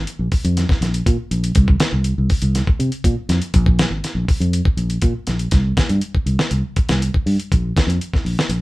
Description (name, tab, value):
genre	afrobeat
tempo	121 BPM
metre	4/4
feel	straight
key	unclear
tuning	A4 = 443 Hz
part	fingered electric bass	bass	0.0-8.6 s	Ab1 to C3	-19 LUFS	equal	none
part	dusty soul sampler-style drum kit	drums	0.1-8.6 s	hi-hat, kick drum, snare drum	-18 LUFS	equal	none
room	moderate studio reverb, RT60 0.6 s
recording	band playing live in one room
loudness	-16 LUFS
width	side -20 dB against mid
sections	0.0-5.5 A section; 5.5-8.6 B section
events	none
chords	none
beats	0.07 0.56 1.06 | 1.55 2.05 2.55 3.04 | 3.54 4.04 4.53 5.03 | 5.52 6.02 6.52 7.01 | 7.51 8.01 8.50